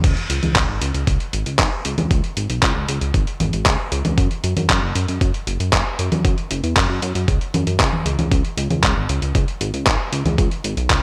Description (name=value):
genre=italo disco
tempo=116 BPM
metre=4/4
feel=straight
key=unclear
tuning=A4 = 440 Hz
part: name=chorused synth bass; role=bass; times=0.0-11.0 s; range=F#1 to F#2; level=-24 LUFS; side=equal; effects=tube saturation
part: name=dusty soul sampler-style drum kit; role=drums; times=0.0-11.0 s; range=congas, crash cymbal, handclaps, hi-hat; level=-23 LUFS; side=equal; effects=overdrive
part: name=electronic kick drum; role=drums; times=0.0-11.0 s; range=none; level=-22 LUFS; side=equal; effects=overdrive
room=light reverb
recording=bright 1980s-style digital production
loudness=-20 LUFS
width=mono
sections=0.0-11.0 A section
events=none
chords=none